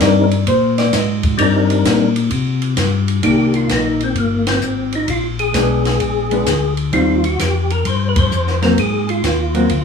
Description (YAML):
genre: soul jazz organ trio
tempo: 130 BPM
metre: 4/4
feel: swing 67% on 8ths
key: C minor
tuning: A4 = 439 Hz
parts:
  - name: percussive tonewheel organ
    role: melody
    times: 0.0-9.8 s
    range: G3 to C5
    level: -18 LUFS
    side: left 2 dB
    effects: chorus vibrato, fast rotary speaker
  - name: hollow-body jazz guitar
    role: accompaniment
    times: 0.0-9.7 s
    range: Eb3 to Eb5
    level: -18 LUFS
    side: equal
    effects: none
  - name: mellow tonewheel organ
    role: bass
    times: 0.0-9.8 s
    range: G1 to C3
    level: -18 LUFS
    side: left 3 dB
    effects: chorus vibrato, slow rotary speaker
  - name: compact cocktail drum kit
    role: drums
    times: 0.0-9.8 s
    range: hi-hat, kick drum, ride cymbal, snare drum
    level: -21 LUFS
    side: equal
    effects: none
room: moderate club reverb, RT60 0.9 s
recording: small room ambience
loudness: -14 LUFS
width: side -6 dB against mid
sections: 0.0-3.2 A section; 3.2-9.8 B section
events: hollow-body jazz guitar solo 0.0-3.2; band accent 4.4, 8.1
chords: 0.0 Cm9; 5.1 Bb7b9; 6.9 Eb69; 8.8 Ab9